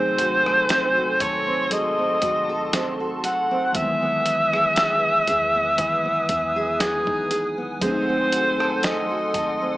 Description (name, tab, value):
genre	contemporary R&B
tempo	59 BPM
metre	4/4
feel	swing 54% on 16ths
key	unclear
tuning	A4 = 440 Hz
part	warm alto saxophone	melody	0.0-9.8 s	G#4 to F#5	-20 LUFS	equal	none
part	mellow tine electric piano	accompaniment	0.0-9.8 s	B#2 to D#4	-31 LUFS	equal	medium stereo tremolo
part	hollow soft pad	sustained chords	0.0-9.8 s	F#4 to D#6	-31 LUFS	left 1 dB	ensemble chorus
part	nylon-string guitar	arpeggios	0.0-9.8 s	E3 to A4	-29 LUFS	right 2 dB	none
part	warm 808-style bass	bass	0.0-9.8 s	D#1 to E2	-42 LUFS	equal	none
part	dusty soul sampler-style drum kit	drums	0.2-9.6 s	hi-hat, kick drum, rim click, snare drum	-27 LUFS	equal	none
room	moderate studio reverb, RT60 0.6 s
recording	small speaker sound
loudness	-19 LUFS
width	side -17 dB against mid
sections	0.0-9.8 A section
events	none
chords	0.0 G#7b9; 3.7 Emaj7; 7.8 G#7b9